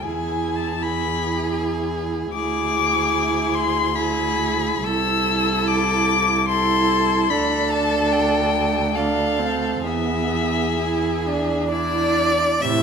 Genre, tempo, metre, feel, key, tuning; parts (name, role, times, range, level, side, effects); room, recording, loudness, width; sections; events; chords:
classical, slow romantic movement for string quartet; 64-80 BPM; 3/4; rubato; A4 = 440 Hz
rich violin; melody; 0.0-12.8 s; D4 to E6; -23 LUFS; left 7 dB
clear violin; second line; 0.0-12.8 s; G#4 to E5; -25 LUFS; left 1 dB
rich viola; accompaniment; 0.0-12.8 s; C3 to E4; -24 LUFS; right 6 dB
rich cello; bass; 0.0-12.8 s; C2 to A2; -26 LUFS; right 3 dB
wet stone room reverb, RT60 1.2 s; -18 LUFS; side -6 dB against mid
0.0-12.6 A section
0.0 E; 2.3 E7/D; 4.8 Am/C; 7.3 Dm; 9.8 E